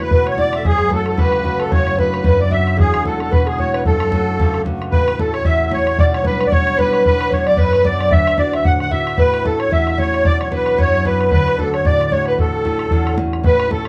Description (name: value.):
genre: celtic folk, Celtic reel.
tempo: 225 BPM.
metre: 4/4.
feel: swing 57% on 8ths.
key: F# minor, A major from 4.9 s.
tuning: A4 = 439 Hz.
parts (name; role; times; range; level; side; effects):
musette accordion; melody; 0.0-13.9 s; G#4 to F#5; -21 LUFS; equal; none.
mellow soprano saxophone; second line; 0.0-13.9 s; G#4 to F#5; -26 LUFS; equal; none.
concert harp; accompaniment; 0.0-13.9 s; E1 to F#4; -23 LUFS; equal; none.
bodhran; percussion; 0.0-13.9 s; none; -21 LUFS; equal; none.
baroque flute; second line; 0.6-13.1 s; G#4 to F#5; -27 LUFS; equal; none.
room: moderate studio ambience, RT60 0.5 s.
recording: band playing live in one room.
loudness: -16 LUFS.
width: mono.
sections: 0.0-4.9 A section; 4.9-13.5 B section.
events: none.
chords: 0.0 E; 0.6 F#m; 1.7 Bm/F#; 2.8 Eadd9; 3.9 F#m; 4.9 A; 6.0 G/B; 7.1 Bm; 8.1 Dadd9; 9.2 A; 10.2 Bm; 11.3 D; 12.4 A.